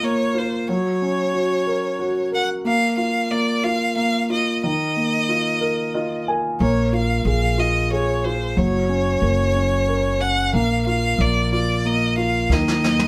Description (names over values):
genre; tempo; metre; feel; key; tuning
six-eight pop ballad; 61 BPM (dotted quarters); 6/8; straight; Bb minor; A4 = 439 Hz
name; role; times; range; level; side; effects
clear violin; melody; 0.0-13.1 s; C5 to Gb5; -25 LUFS; equal; none
warm concert grand piano; accompaniment; 0.0-13.1 s; Eb3 to Ab5; -24 LUFS; equal; none
upright bass; bass; 6.6-13.1 s; Gb1 to Eb2; -24 LUFS; equal; none
vintage brush drum kit; drums; 12.5-13.1 s; snare drum, toms; -26 LUFS; equal; none
room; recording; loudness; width
wet studio reverb, RT60 0.7 s; band playing live in one room; -21 LUFS; mono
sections
0.0-13.1 A section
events
grand piano fill 5.6-6.6; drum fill 12.5-13.1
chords
0.0 Bb5; 0.7 Gb; 2.6 Bb5; 4.6 Ebsus2; 6.6 Bb5; 8.6 Gb; 10.5 Bb5; 12.5 Eb5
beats
| 0.68 1.66 | 2.65 3.63 | 4.62 5.61 | 6.59 7.58 | 8.56 9.55 | 10.54 11.52 | 12.51